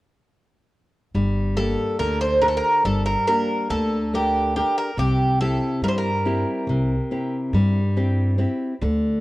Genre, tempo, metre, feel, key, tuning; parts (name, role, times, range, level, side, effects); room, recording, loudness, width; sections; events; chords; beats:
greek folk; 141 BPM (eighths); 9/8; straight; G dorian; A4 = 441 Hz
nylon-string guitar; accompaniment; 1.1-9.2 s; C3 to Bb4; -24 LUFS; left 1 dB
upright bass; bass; 1.1-9.2 s; G1 to G2; -23 LUFS; equal
Greek bouzouki; melody; 1.6-8.4 s; G4 to C5; -22 LUFS; right 1 dB
light reverb; worn, warbling old tape, cassette tape, warbly pitch drift; -19 LUFS; side -18 dB against mid
1.2-9.2 A section
1.2 Gm; 5.0 C
| 1.15 1.58 2.00 2.43 2.85 3.28 3.70 4.13 4.55 | 4.98 5.41 5.83 6.26 6.69 7.11 7.54 7.97 8.39 | 8.82